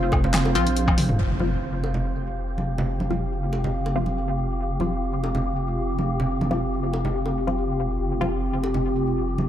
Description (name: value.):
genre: deep dubstep.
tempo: 141 BPM.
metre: 4/4.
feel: swing 53% on 16ths, half-time.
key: unclear.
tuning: A4 = 440 Hz.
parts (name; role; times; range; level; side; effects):
dark analog pad; sustained chords; 0.0-9.5 s; C4 to F5; -29 LUFS; right 2 dB; chorus.
deep soft wobble bass; bass; 0.0-9.5 s; F1 to Bb1; -26 LUFS; equal; chorus.
wind-like tuned noise texture; texture; 0.0-9.5 s; G4 to C5; -32 LUFS; left 4 dB; built-in reverb.
deep house drum kit; drums; 0.1-1.2 s; handclaps, hi-hat, snare drum, toms, woodblock; -25 LUFS; left 1 dB; low-pass filter on hats, low-pass filter on perc, low-pass filter on snare, low-pass filter on toms, low-pass filter on room.
electronic kick drum; drums; 0.1-1.0 s; none; -22 LUFS; equal; none.
bongos and congas; percussion; 0.1-9.5 s; none; -30 LUFS; right 2 dB; none.
filtered dub chord stab; stabs; 0.6-8.3 s; F3 to F4; -31 LUFS; left 3 dB; phaser, dub echo.
impact; sound effects; 1.2-2.9 s; none; -29 LUFS; equal; none.
room: light reverb, digital ambience.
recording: dark, warm production.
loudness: -22 LUFS.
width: side -11 dB against mid.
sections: 0.0-1.2 A section; 1.2-9.5 B section.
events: drop 0.0-1.2; drum fill 0.9-1.2; impact 1.2-2.9; filter sweep on synth stab 1.2-9.5.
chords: 0.0 F5.